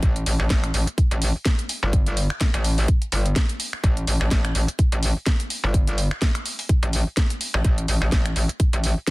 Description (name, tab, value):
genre	bass house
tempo	126 BPM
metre	4/4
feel	swing 56% on 16ths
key	unclear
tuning	A4 = 441 Hz
part	metallic wobble bass	bass	0.0-8.9 s	G1 to A1	-21 LUFS	equal	distortion, chorus, tube saturation, sidechain pumping
part	electronic kick drum	drums	0.0-9.1 s	none	-20 LUFS	equal	none
part	garage drum kit	drums	0.0-9.1 s	finger snaps, hi-hat, snare drum	-27 LUFS	equal	none
room	little or no reverb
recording	dense, heavily limited modern master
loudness	-19 LUFS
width	side -21 dB against mid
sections	0.0-9.1 A section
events	none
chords	none